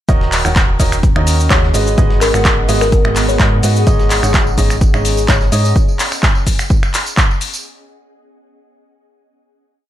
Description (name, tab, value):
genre	piano house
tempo	127 BPM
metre	4/4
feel	swing 54% on 16ths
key	unclear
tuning	A4 = 440 Hz
part	clear upright piano	riff	0.1-5.7 s	D#3 to F#5	-20 LUFS	right 2 dB	sidechain pumping, ping-pong delay
part	solid FM bass	bass	0.1-5.7 s	D#1 to G#2	-16 LUFS	equal	sidechain pumping
part	breakbeat sampler-style drum kit	drums	0.1-5.6 s	hi-hat, snare drum	-30 LUFS	equal	none
part	electronic kick drum	drums	0.1-7.3 s	none	-13 LUFS	equal	none
part	punchy analog drum machine	drums	0.1-7.6 s	finger snaps, handclaps, hi-hat, shaker	-18 LUFS	equal	none
part	ethereal airy pad	texture	1.0-5.8 s	B3 to A#5	-25 LUFS	equal	ensemble chorus, built-in reverb, sidechain pumping
part	kalimba	melody	1.5-5.5 s	A#4 to C#5	-21 LUFS	left 4 dB	ping-pong delay
part	tambourine	percussion	3.9-7.6 s	none	-30 LUFS	right 6 dB	none
room	digital ambience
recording	dark, warm production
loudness	-11 LUFS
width	side -12 dB against mid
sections	0.1-7.6 drop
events	drop 0.1-7.6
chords	0.1 D#m7; 1.7 G#m7; 3.9 C#sus2/G#; 5.8 N.C.